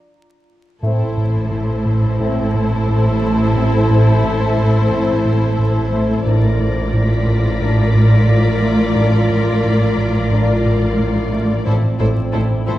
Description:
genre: cinematic, suspense film score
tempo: 89 BPM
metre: 4/4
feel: straight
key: A phrygian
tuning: A4 = 440 Hz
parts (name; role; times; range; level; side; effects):
- warm symphonic violin section; melody; 0.8-12.8 s; C5 to D5; -27 LUFS; left 4 dB; none
- dark studio violin section; second line; 0.8-12.8 s; A4 to Bb4; -26 LUFS; left 2 dB; none
- rich studio viola section; accompaniment; 0.8-12.7 s; E4 to F4; -26 LUFS; equal; none
- deep dark ambient pad; sustained chords; 2.0-12.8 s; E4 to D5; -25 LUFS; left 2 dB; chorus, built-in reverb
- mellow French horn section; sustained chords; 0.8-12.8 s; A3 to Bb4; -27 LUFS; left 1 dB; none
- round analog bass; riff; 0.8-12.8 s; A2 to A3; -17 LUFS; right 1 dB; none
- rich studio cello section; bass; 0.8-12.8 s; A2; -21 LUFS; equal; none
- warm studio double bass section; bass; 0.8-12.7 s; A1; -21 LUFS; right 1 dB; none
- warm studio violin section; texture; 6.3-11.3 s; Bb6 to B6; -30 LUFS; left 4 dB; none
room: wet scoring stage reverb, RT60 1.9 s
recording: heard from further back in the room, vinyl crackle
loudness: -13 LUFS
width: side -14 dB against mid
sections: 0.8-12.8 A section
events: break 0.0-0.8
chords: 0.0 N.C.; 0.8 Am; 6.3 Bb/A; 11.7 Am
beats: 0.12 | 0.82 1.51 2.19 2.87 | 3.56 4.24 4.92 5.59 | 6.27 6.95 7.62 8.30 | 8.97 9.65 10.32 10.99 | 11.67 12.34

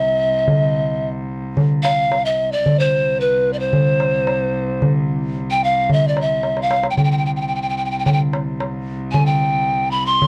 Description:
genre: Arabic maqam ensemble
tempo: 111 BPM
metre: 4/4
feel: straight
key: C maqam suznak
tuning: A4 = 440 Hz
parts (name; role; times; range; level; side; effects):
- breathy pan flute; melody; 0.0-10.3 s; B4 to C6; -20 LUFS; equal; none
- warm cello; drone; 0.0-10.3 s; C2; -28 LUFS; equal; none
- darbuka; percussion; 0.1-10.3 s; none; -22 LUFS; equal; none
room: light reverb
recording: worn, warbling old tape, cassette tape, warbly pitch drift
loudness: -18 LUFS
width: mono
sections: 0.0-10.3 A section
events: drum fill 6.4-7.0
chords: none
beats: | 0.48 1.03 1.57 2.11 | 2.65 3.19 3.73 4.27 | 4.82 5.36 5.90 6.44 | 6.98 7.52 8.06 8.60 | 9.14 9.68 10.22

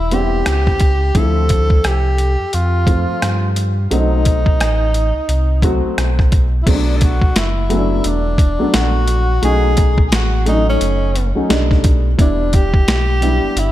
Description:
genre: hip hop, jazz-hop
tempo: 87 BPM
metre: 4/4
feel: swing 60% on 16ths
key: unclear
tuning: A4 = 439 Hz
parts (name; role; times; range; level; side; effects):
- breathy tenor saxophone; melody; 0.0-13.7 s; C#4 to A4; -21 LUFS; equal; diffuse ambient delay
- sub bass with octave; bass; 0.0-13.7 s; E1 to G2; -17 LUFS; equal; none
- dark upright piano; accompaniment; 0.1-13.7 s; F3 to F#4; -20 LUFS; left 1 dB; lush chorus
- boom bap sampler-style drum kit; drums; 0.1-13.7 s; crash cymbal, hi-hat, kick drum, rim click, snare drum; -16 LUFS; equal; none
room: light reverb, digital ambience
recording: none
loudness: -13 LUFS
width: side -14 dB against mid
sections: 0.0-6.7 A section; 6.7-13.7 B section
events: none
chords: 0.0 Am9 (rootless); 1.1 Dm9; 3.9 B7b9; 6.7 Bm7; 9.4 B7; 11.5 B7alt; 12.2 Em7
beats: 0.46 | 1.15 1.84 2.53 3.22 | 3.91 4.60 5.29 5.98 | 6.67 7.36 8.05 8.74 | 9.43 10.12 10.80 11.49 | 12.19 12.87 13.56

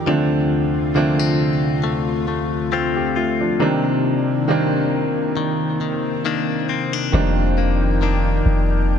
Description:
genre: contemporary R&B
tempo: 68 BPM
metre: 4/4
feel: swing 54% on 16ths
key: unclear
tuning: A4 = 442 Hz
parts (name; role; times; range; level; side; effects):
- clear concert grand piano; accompaniment; 0.0-9.0 s; D3 to G4; -21 LUFS; right 2 dB; none
- lush unison pad; sustained chords; 0.0-9.0 s; D2 to G5; -24 LUFS; equal; chorus
- direct-recorded clean electric guitar; arpeggios; 0.1-9.0 s; F2 to F4; -23 LUFS; left 8 dB; phaser
- long sustained 808-style bass; bass; 7.1-9.0 s; F1; -18 LUFS; equal; none
room: light reverb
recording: dark, warm production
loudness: -17 LUFS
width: side -8 dB against mid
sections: 0.0-7.1 A section; 7.1-9.0 B section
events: none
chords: 0.1 Dm7; 3.6 Cm9; 7.1 F13sus4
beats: | 0.07 0.96 1.84 2.72 | 3.60 4.49 5.37 6.25 | 7.13 8.01 8.90

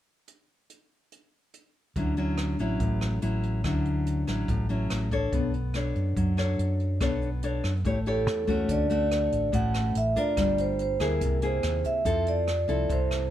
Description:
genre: bossa nova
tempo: 143 BPM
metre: 4/4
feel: straight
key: D major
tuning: A4 = 440 Hz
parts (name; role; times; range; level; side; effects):
- jazz brush drum kit; drums; 0.3-13.2 s; hi-hat, kick drum, rim click; -34 LUFS; equal; none
- nylon-string guitar; accompaniment; 2.0-13.3 s; A2 to C#5; -29 LUFS; left 2 dB; none
- fingered electric bass; bass; 2.0-13.3 s; G1 to F#2; -29 LUFS; equal; none
- vibraphone with soft mallets; melody; 8.1-13.3 s; A4 to F#5; -27 LUFS; right 2 dB; none
room: little or no reverb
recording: none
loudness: -24 LUFS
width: side -12 dB against mid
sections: 0.3-2.0 A section; 2.0-8.7 B section; 8.7-13.3 C section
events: none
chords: 0.3 N.C.; 2.0 Dmaj9; 5.3 Bm9; 7.8 A7; 8.7 Dmaj7; 10.4 Gm7; 11.2 C7alt; 12.1 Fmaj7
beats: | 0.28 0.70 1.12 1.54 | 1.96 2.38 2.80 3.22 | 3.64 4.06 4.48 4.91 | 5.33 5.75 6.17 6.59 | 7.01 7.43 7.85 8.27 | 8.69 9.11 9.53 9.95 | 10.37 10.79 11.21 11.63 | 12.05 12.47 12.89

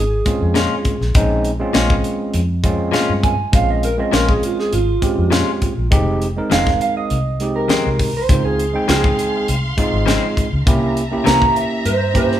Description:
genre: straight-eighth soul blues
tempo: 101 BPM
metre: 4/4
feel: straight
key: unclear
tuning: A4 = 441 Hz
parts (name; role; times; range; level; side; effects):
- electric guitar through a small old amp; second line; 0.0-12.4 s; F4 to Bb5; -20 LUFS; right 3 dB; none
- overdriven tine electric piano; accompaniment; 0.0-12.4 s; Ab3 to G5; -21 LUFS; right 2 dB; none
- vintage muted fingered electric bass; bass; 0.0-12.4 s; F1 to G2; -21 LUFS; equal; none
- tight funk drum kit; drums; 0.3-12.4 s; hi-hat, kick drum, snare drum; -18 LUFS; left 1 dB; none
- direct-recorded clean electric guitar; stabs; 0.5-11.4 s; F2 to F4; -22 LUFS; left 6 dB; none
- warm symphonic string section; sustained chords; 8.3-12.4 s; E5 to C6; -27 LUFS; left 1 dB; none
room: moderate large studio reverb, RT60 1.2 s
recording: band playing live in one room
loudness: -14 LUFS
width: side -11 dB against mid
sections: 0.0-12.4 A section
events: clean electric guitar solo 0.0-12.4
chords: 0.0 Bbm7; 5.9 Fm7; 8.3 Dbmaj7; 10.7 C7b9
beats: 0.56 | 1.16 1.75 2.35 2.94 | 3.54 4.13 4.73 5.32 | 5.92 6.51 7.11 7.70 | 8.29 8.89 9.48 10.07 | 10.67 11.26 11.85

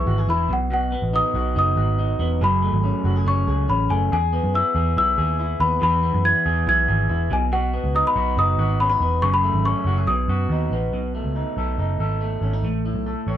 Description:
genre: jangly indie pop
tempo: 141 BPM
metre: 4/4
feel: straight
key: unclear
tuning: A4 = 444 Hz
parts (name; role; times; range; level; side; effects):
- worn celesta; melody; 0.0-10.5 s; F#5 to G#6; -22 LUFS; left 2 dB; none
- electric guitar through a small old amp; arpeggios; 0.0-13.4 s; F#2 to C#5; -26 LUFS; equal; none
- vintage muted picked electric bass; bass; 0.0-13.4 s; E1 to F#2; -22 LUFS; right 1 dB; none
room: moderate studio reverb, RT60 0.6 s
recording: band playing live in one room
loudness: -18 LUFS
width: side -11 dB against mid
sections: 0.0-10.9 A section; 10.9-13.4 B section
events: none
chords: 0.5 B; 2.4 F#madd9; 4.1 E; 7.3 B; 9.2 F#madd9; 10.1 B; 10.9 B7; 12.6 Aadd9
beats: 0.28 | 0.70 1.13 1.56 1.98 | 2.41 2.83 3.26 3.69 | 4.11 4.54 4.96 5.39 | 5.82 6.24 6.67 7.09 | 7.52 7.95 8.37 8.80 | 9.22 9.65 10.08 10.50 | 10.93 11.36 11.78 12.21 | 12.63 13.06

